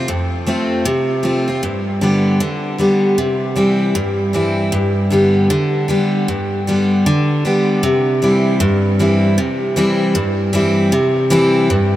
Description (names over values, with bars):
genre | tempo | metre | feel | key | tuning
country | 155 BPM | 4/4 | swing 62% on 8ths | C major | A4 = 442 Hz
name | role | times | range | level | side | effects
picked steel-string acoustic guitar | solo | 0.0-12.0 s | F2 to G4 | -13 LUFS | equal | none
room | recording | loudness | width
wet huge ambient reverb, RT60 8.4 s | in a vast, echoing space | -13 LUFS | side -13 dB against mid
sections
0.0-9.4 A section; 9.4-12.0 B section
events
none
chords
0.0 F; 1.6 G; 3.2 C; 4.7 G; 7.8 C